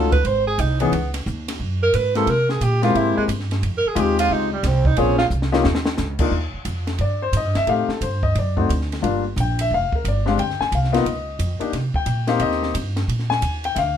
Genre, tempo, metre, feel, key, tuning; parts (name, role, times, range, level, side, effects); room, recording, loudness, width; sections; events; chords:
jazz, small-group swing and bop; 178 BPM; 4/4; swing 64% on 8ths; Eb major from 6.3 s; A4 = 442 Hz
breathy tenor saxophone; second line; 0.0-5.3 s; G3 to C5; -20 LUFS; right 4 dB
warm concert grand piano; accompaniment; 0.0-14.0 s; Fb3 to Ab5; -21 LUFS; left 5 dB
upright bass; bass; 0.0-14.0 s; F1 to C3; -22 LUFS; right 1 dB
compact cocktail drum kit; drums; 0.1-13.9 s; crash cymbal, hi-hat, kick drum, ride cymbal, snare drum; -27 LUFS; equal
moderate studio reverb, RT60 0.5 s; minimal, uncompressed stereo recording; -18 LUFS; side -9 dB against mid
0.0-6.3 A section; 6.3-14.0 A section
tenor saxophone solo 0.0-6.3; drum fill 5.3-6.0
0.2 Ab; 0.9 Dbsus2; 2.3 C7b13; 3.6 Fm9; 5.0 Bbm9; 5.6 Eb5; 6.3 Eb; 7.7 Am7b5; 8.4 D7b9; 9.0 Gm7; 10.4 Cm11; 11.1 Db69; 11.7 Cm7; 13.1 Bb13